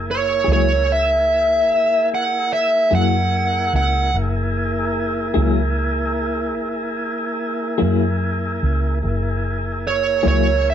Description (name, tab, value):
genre	blues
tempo	49 BPM (dotted quarters)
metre	12/8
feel	straight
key	F# mixolydian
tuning	A4 = 439 Hz
part	tonewheel organ	sustained chords	0.0-10.7 s	A#3 to G#4	-24 LUFS	equal	slow rotary speaker
part	vintage muted fingered electric bass	bass	0.0-10.7 s	F#1 to F#2	-21 LUFS	equal	none
part	smooth overdriven lead guitar	melody	0.1-10.7 s	C#5 to F#5	-17 LUFS	right 2 dB	none
part	clean electric guitar	accompaniment	0.4-10.5 s	F#3 to G#4	-20 LUFS	left 5 dB	tremolo
room	moderate studio reverb, RT60 0.5 s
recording	band playing live in one room, nothing above 10.6 kHz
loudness	-17 LUFS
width	side -9 dB against mid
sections	0.0-10.7 A section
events	none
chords	0.0 F#9